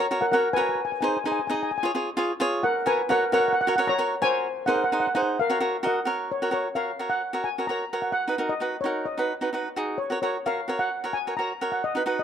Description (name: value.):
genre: calypso.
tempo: 130 BPM.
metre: 4/4.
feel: straight.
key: F# major.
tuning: A4 = 440 Hz.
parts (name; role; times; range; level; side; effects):
steel pan; melody; 0.0-12.2 s; A#4 to A#5; -25 LUFS; left 1 dB; none.
cavaquinho; accompaniment; 0.0-12.2 s; D#4 to D#5; -26 LUFS; right 2 dB; none.
room: moderate plate reverb, RT60 2.8 s.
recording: dark, warm production.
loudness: -23 LUFS.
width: side -8 dB against mid.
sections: 0.0-6.3 A section; 6.3-12.2 B section.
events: none.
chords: 0.0 F#; 0.8 G#; 1.7 C#; 2.6 F#; 4.5 G#; 5.4 F#6; 6.3 F#; 8.2 B; 10.0 F#.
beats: 0.34 | 0.80 1.26 1.72 2.18 | 2.64 3.10 3.56 4.02 | 4.48 4.94 5.40 5.86 | 6.32 6.78 7.24 7.70 | 8.16 8.62 9.07 9.53 | 9.99 10.45 10.91 11.37 | 11.82.